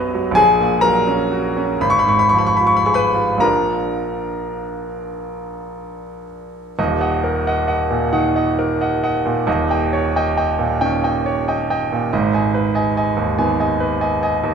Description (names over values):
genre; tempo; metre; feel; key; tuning
classical, romantic nocturne for solo piano; 34-48 BPM (dotted quarters); 6/8; rubato; Eb minor; A4 = 444 Hz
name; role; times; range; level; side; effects
bright grand piano; solo; 0.0-14.5 s; Eb1 to D#6; -16 LUFS; equal; none
room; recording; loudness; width
moderate recital hall reverb, RT60 1.7 s; minimal, uncompressed stereo recording; -15 LUFS; side -6 dB against mid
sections
0.0-6.8 A section; 6.8-14.5 A section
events
none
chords
0.4 Gb/Bb; 1.8 Fdim/Ab; 3.4 Bb; 6.8 Ebm; 9.5 Eb7; 12.1 Abm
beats
| 0.37 1.80 | 3.42 5.16 | 6.78 8.13 | 9.47 10.81 | 12.12 13.38